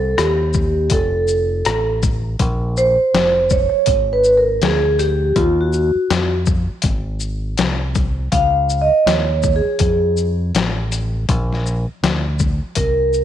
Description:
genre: hip hop, jazz-hop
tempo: 81 BPM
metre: 4/4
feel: swing 59% on 16ths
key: unclear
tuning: A4 = 440 Hz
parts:
  - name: vibraphone with soft mallets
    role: accompaniment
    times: 0.0-13.2 s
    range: F4 to F5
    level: -16 LUFS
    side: right 1 dB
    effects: none
  - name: deep dub fingered electric bass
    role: bass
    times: 0.0-13.2 s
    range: F1 to F2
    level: -20 LUFS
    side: equal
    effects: none
  - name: trip hop sampler-style drum kit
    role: drums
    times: 0.2-13.2 s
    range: hi-hat, kick drum, rim click, shaker, snare drum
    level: -20 LUFS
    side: left 3 dB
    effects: none
room: light reverb, digital ambience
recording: 1960s-style stereo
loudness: -15 LUFS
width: side -10 dB against mid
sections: 0.0-2.4 A section; 2.4-13.2 B section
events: vibraphone solo 0.0-2.4, 2.4-13.2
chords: 0.0 Cm; 0.9 F; 2.4 Bbsus2; 5.4 Ebmadd9; 6.8 Ab; 8.3 Db; 11.3 Bbadd9

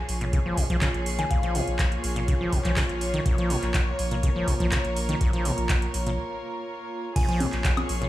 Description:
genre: acid house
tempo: 123 BPM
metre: 4/4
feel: straight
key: Bb minor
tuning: A4 = 440 Hz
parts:
  - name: warm studio string section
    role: sustained chords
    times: 0.0-8.1 s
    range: Bb3 to Db5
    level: -31 LUFS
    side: equal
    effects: sidechain pumping
  - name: warm sub bass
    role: bass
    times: 0.0-8.1 s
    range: Ab1 to Bb1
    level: -29 LUFS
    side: equal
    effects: sidechain pumping
  - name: booming analog drum machine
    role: drums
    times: 0.1-8.1 s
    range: congas, crash cymbal, handclaps, hi-hat, woodblock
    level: -31 LUFS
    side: equal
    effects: overdrive
  - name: deep acid bass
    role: riff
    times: 0.2-8.1 s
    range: Bb2 to F3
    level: -30 LUFS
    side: equal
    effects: overdrive, vintage 12-bit sampler grit, sidechain pumping, dub echo
  - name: electronic kick drum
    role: drums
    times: 0.3-7.7 s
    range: none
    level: -26 LUFS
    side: equal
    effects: overdrive
  - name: soft synth bell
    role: melody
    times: 1.2-1.7, 7.2-7.4 s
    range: F5 to Ab5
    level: -36 LUFS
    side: left 3 dB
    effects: chorus, phaser, dub echo
room: light reverb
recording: studio reverb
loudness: -23 LUFS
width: side -15 dB against mid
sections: 0.0-7.2 A section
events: break 6.2-7.2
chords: 0.0 Bbm7

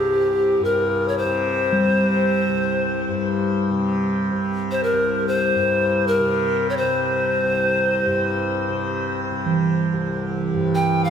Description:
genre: world meditative, free-time meditation music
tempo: free time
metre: none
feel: none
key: C major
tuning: A4 = 440 Hz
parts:
  - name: breathy bright pan flute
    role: melody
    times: 0.0-11.1 s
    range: G4 to G5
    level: -21 LUFS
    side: left 1 dB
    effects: shimmer reverb, ping-pong delay
  - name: tanpura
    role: drone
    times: 0.0-11.1 s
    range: C2 to C3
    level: -25 LUFS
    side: left 2 dB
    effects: none
  - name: bronze singing bowl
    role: texture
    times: 1.7-11.1 s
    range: E3 to G3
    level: -24 LUFS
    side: right 2 dB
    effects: none
room: wet recital hall reverb, RT60 1.4 s, small room ambience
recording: none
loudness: -18 LUFS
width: side -8 dB against mid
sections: 0.0-11.1 A section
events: none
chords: none

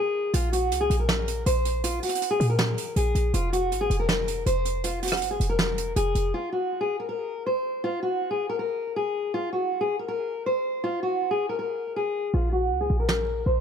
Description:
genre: hip hop, trap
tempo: 160 BPM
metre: 4/4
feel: half-time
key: unclear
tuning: A4 = 436 Hz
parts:
  - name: fingerpicked steel-string acoustic guitar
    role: melody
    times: 0.0-13.6 s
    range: F4 to C5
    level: -26 LUFS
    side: left 1 dB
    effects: low-pass filter, tape echo
  - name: short 808-style bass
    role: bass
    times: 0.3-6.3, 12.3-13.6 s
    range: F1 to Bb2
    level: -26 LUFS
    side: equal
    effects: none
  - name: soft brush drum kit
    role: drums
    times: 0.3-6.2, 13.1-13.2 s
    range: hi-hat, rim click, snare drum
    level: -29 LUFS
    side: right 2 dB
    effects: none
room: studio reverb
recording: none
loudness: -24 LUFS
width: side -7 dB against mid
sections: 0.0-6.3 A section; 6.3-12.3 B section; 12.3-13.6 C section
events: break 0.0-0.3; hi-hats muted 12.3-13.6; filter sweep on steel-string acoustic guitar 12.3-13.6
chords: 0.3 N.C.; 3.3 Fm; 6.3 N.C.; 12.3 Bbm

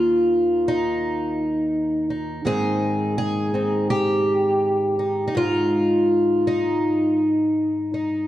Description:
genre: folk, solo fingerstyle acoustic guitar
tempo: 82 BPM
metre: 4/4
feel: rubato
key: unclear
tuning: A4 = 440 Hz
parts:
  - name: fingerpicked twelve-string acoustic guitar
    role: solo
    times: 0.0-8.3 s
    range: Eb2 to Ab4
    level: -19 LUFS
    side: equal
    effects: none
room: moderate concert hall reverb, RT60 1.7 s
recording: dark, warm production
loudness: -19 LUFS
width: side -13 dB against mid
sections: 0.0-8.3 A section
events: none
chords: 0.0 N.C.; 2.5 Ab

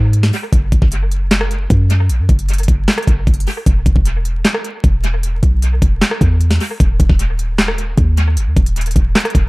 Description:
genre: hip hop, trap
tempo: 153 BPM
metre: 4/4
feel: half-time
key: unclear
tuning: A4 = 440 Hz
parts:
  - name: clean 808-style bass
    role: bass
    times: 0.0-9.5 s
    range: D#1 to G#2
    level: -14 LUFS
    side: equal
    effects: none
  - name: trap drum kit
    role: drums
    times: 0.1-9.4 s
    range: handclaps, hi-hat, kick drum, rim click, snare drum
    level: -14 LUFS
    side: equal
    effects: overdrive, dub echo
room: little or no reverb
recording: echo-heavy mix, vinyl crackle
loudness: -12 LUFS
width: side -23 dB against mid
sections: 0.0-9.5 A section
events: none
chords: none

